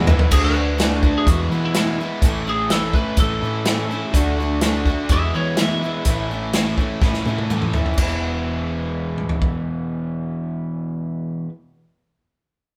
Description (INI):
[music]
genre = folk rock and heartland rock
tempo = 125 BPM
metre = 4/4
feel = straight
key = E mixolydian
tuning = A4 = 439 Hz
[part]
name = picked steel-string acoustic guitar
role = accompaniment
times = 0.0-11.6 s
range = E2 to F#4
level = -31 LUFS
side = equal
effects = none
[part]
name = crunchy overdriven guitar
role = riff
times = 0.0-11.5 s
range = E2 to F#4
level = -27 LUFS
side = equal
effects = none
[part]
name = hollow-body short-scale fingered electric bass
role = bass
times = 0.0-11.4 s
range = E1 to E3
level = -28 LUFS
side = equal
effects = none
[part]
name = natural country drum kit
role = drums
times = 0.1-9.5 s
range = crash cymbal, hi-hat, kick drum, snare drum, toms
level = -22 LUFS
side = equal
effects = none
[part]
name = lightly driven lead guitar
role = melody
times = 0.3-6.5 s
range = E4 to E5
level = -28 LUFS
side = equal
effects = slapback echo
[sound]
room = light reverb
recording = band playing live in one room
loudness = -20 LUFS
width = mono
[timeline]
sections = 0.3-8.0 A section; 8.0-11.8 B section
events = drum fill 0.0-0.3, 7.0-8.0; lead electric guitar solo 0.3-8.0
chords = 0.3 D; 1.3 E; 2.2 A; 4.1 D; 5.1 E; 6.1 A; 8.0 E